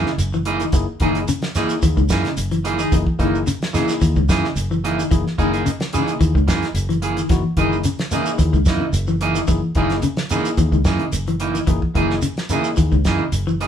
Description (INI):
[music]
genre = afrobeat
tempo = 110 BPM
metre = 4/4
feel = swing 53% on 16ths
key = F# mixolydian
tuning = A4 = 440 Hz
[part]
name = semi-hollow electric guitar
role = arpeggios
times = 0.0-13.7 s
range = C#3 to E3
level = -23 LUFS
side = left 4 dB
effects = tremolo
[part]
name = electric guitar at the edge of break-up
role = stabs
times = 0.0-13.7 s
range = E3 to G#4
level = -22 LUFS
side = right 4 dB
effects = none
[part]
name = fingered electric bass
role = bass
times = 0.0-13.7 s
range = F#1 to F#2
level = -21 LUFS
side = equal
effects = none
[part]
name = warm soul drum kit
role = drums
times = 0.1-13.7 s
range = hi-hat, kick drum, snare drum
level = -22 LUFS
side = equal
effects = none
[part]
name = shekere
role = percussion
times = 0.2-13.6 s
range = none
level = -27 LUFS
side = right 2 dB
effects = none
[part]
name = barky tine electric piano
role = accompaniment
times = 0.7-12.9 s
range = A#3 to G#4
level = -26 LUFS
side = left 6 dB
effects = overdrive
[sound]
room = moderate studio reverb, RT60 0.6 s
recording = band playing live in one room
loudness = -17 LUFS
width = side -9 dB against mid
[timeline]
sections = 0.0-13.7 A section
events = none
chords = 0.0 F#13